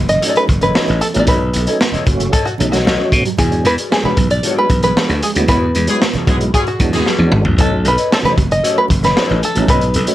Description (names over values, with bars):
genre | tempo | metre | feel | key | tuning
funk | 114 BPM | 4/4 | straight | B mixolydian | A4 = 440 Hz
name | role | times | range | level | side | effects
mellow electric guitar | riff | 0.0-10.1 s | E3 to B3 | -25 LUFS | right 3 dB | ensemble chorus
slap bass | bass | 0.0-10.1 s | F#1 to B2 | -17 LUFS | equal | none
open-back banjo | melody | 0.1-10.1 s | F#4 to D#5 | -18 LUFS | equal | none
mellow electric guitar | accompaniment | 0.1-10.1 s | F#4 to D#5 | -24 LUFS | left 6 dB | lush chorus
crunchy breakbeat drum kit | drums | 0.1-10.1 s | hi-hat, kick drum, snare drum, toms | -17 LUFS | equal | none
tonewheel organ | stabs | 0.2-10.1 s | F#3 to F#4 | -23 LUFS | right 2 dB | overdrive, chorus vibrato, slow rotary speaker
congas | percussion | 0.2-10.1 s | none | -26 LUFS | right 5 dB | none
clear horn section | second line | 5.9-7.1 s | D3 to G#4 | -23 LUFS | left 1 dB | slapback echo, plate reverb
room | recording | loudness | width
light reverb | none | -12 LUFS | side -14 dB against mid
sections
0.0-10.1 A section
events
band accent 5.5-7.6; drum fill 7.1-7.6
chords
0.0 B9; 3.4 E9; 7.6 B9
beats
0.23 0.75 | 1.28 1.80 2.33 2.86 | 3.38 3.91 4.43 4.96 | 5.49 6.01 6.54 7.06 | 7.58 8.11 8.63 9.16 | 9.68